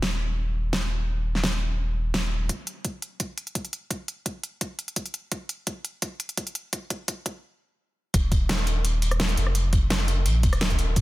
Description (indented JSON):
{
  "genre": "liquid drum and bass",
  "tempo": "170 BPM",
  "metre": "4/4",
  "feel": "straight",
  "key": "unclear",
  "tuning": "A4 = 443 Hz",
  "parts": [
    { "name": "warm sub bass", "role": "bass", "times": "0.0-2.5, 8.1-11.0 s", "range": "Eb1 to Bb1", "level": "-24 LUFS", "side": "equal", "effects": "none" },
    { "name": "pop drum kit", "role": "drums", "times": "0.0-11.0 s", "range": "hi-hat, rim click, snare drum", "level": "-28 LUFS", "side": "equal", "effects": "studio reverb" },
    { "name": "electronic kick drum", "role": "drums", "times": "2.5-11.0 s", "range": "none", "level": "-26 LUFS", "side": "equal", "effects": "high-pass filter on kick, studio reverb" },
    { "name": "breakbeat sampler-style drum kit", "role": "drums", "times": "8.1-11.0 s", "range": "hi-hat, snare drum", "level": "-31 LUFS", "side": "equal", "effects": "high-pass filter on hats, studio reverb, high-pass filter on snare, high-pass filter on room" }
  ],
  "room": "digital ambience",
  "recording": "dense, heavily limited modern master",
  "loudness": "-24 LUFS",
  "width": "side -18 dB against mid",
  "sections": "0.0-2.5 A section; 2.5-8.1 B section; 8.1-11.0 C section",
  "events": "build-up 2.5-8.1; drum fill 5.3-7.4; stop 7.4-8.1; drop 8.1-11.0",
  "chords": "none",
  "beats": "0.02 0.38 0.73 | 1.08 1.44 1.79 2.14 | 2.49 2.85 3.20 3.55 | 3.91 4.26 4.61 4.96 | 5.32 5.67 6.02 6.38 | 6.73 7.08 7.43 7.79 | 8.14 8.49 8.85 9.20 | 9.55 9.91 10.26 10.61 | 10.96"
}